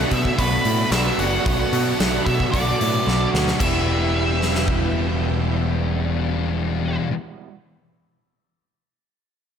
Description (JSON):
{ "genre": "rock, shoegaze and dream pop", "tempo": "112 BPM", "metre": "4/4", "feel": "straight", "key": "E minor", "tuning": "A4 = 442 Hz", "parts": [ { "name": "octave-fuzz lead guitar", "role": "melody", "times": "0.0-7.0 s", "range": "B4 to F#5", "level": "-26 LUFS", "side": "right 1 dB", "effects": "distortion, slapback echo" }, { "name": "string machine, violins", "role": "sustained chords", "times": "0.0-7.0 s", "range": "E4 to B5", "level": "-30 LUFS", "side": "equal", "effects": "ensemble chorus" }, { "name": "electric guitar through a small old amp", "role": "arpeggios", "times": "0.0-7.1 s", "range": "G3 to F#4", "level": "-32 LUFS", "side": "left 4 dB", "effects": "analog chorus, slapback echo" }, { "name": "raw garage guitar", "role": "riff", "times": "0.0-7.1 s", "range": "E2 to G4", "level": "-26 LUFS", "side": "right 12 dB", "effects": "overdrive, reverse reverb" }, { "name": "thick fuzz guitar", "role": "riff", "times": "0.0-7.1 s", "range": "E2 to B3", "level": "-25 LUFS", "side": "left 9 dB", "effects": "distortion, ensemble chorus" }, { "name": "growling picked electric bass", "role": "bass", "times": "0.0-7.0 s", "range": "E1 to B2", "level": "-24 LUFS", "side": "equal", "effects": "overdrive" }, { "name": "huge arena drum kit", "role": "drums", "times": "0.1-4.8 s", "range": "crash cymbal, hi-hat, kick drum, snare drum", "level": "-25 LUFS", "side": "equal", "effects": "none" } ], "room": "light reverb, small room ambience", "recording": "none", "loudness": "-18 LUFS", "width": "side -8 dB against mid", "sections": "0.0-3.6 A section; 3.6-7.9 B section", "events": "drum fill 3.1-3.6", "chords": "0.0 Bm7; 3.6 Em", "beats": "0.39 0.92 | 1.46 2.00 2.53 3.07 | 3.61 4.15 4.69 5.22 | 5.76 6.30 6.84" }